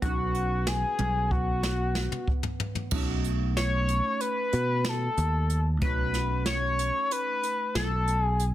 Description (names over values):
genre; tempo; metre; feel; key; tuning
progressive instrumental, band music in an uneven meter; 186 BPM (eighths); 9/8; straight; B mixolydian; A4 = 440 Hz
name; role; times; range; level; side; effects
sync lead; melody; 0.0-8.4 s; F#4 to C#5; -28 LUFS; left 2 dB; chorus, plate reverb
hollow-body jazz guitar; accompaniment; 0.0-8.5 s; A3 to F#4; -37 LUFS; right 2 dB; double-tracked left and right, plate reverb
picked electric bass; bass; 0.0-8.5 s; B1 to B2; -28 LUFS; equal; none
jazz brush drum kit; drums; 0.0-8.5 s; crash cymbal, hi-hat, kick drum, snare drum, toms; -31 LUFS; equal; soft clipping on snare
room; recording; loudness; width
light reverb; dense, heavily limited modern master; -25 LUFS; side -13 dB against mid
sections
0.0-2.9 A section; 2.9-8.5 B section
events
drum fill 1.0-2.9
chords
0.0 Badd9; 2.9 B7